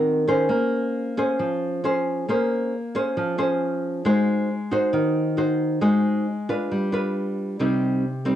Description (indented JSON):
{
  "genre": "bossa nova",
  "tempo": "136 BPM",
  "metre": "4/4",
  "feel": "straight",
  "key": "Bb minor",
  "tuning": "A4 = 440 Hz",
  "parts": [
    { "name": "nylon-string guitar", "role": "solo", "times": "0.0-8.4 s", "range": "C3 to C5", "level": "-21 LUFS", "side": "equal", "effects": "cassette tape" }
  ],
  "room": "moderate studio reverb, RT60 0.5 s",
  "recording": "home recording on cassette",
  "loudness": "-21 LUFS",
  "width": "side -11 dB against mid",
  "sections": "0.0-7.6 A section",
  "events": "none",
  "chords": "0.0 Ab9; 0.5 Bbm9; 4.0 Ab7; 6.7 G7; 7.6 Cm"
}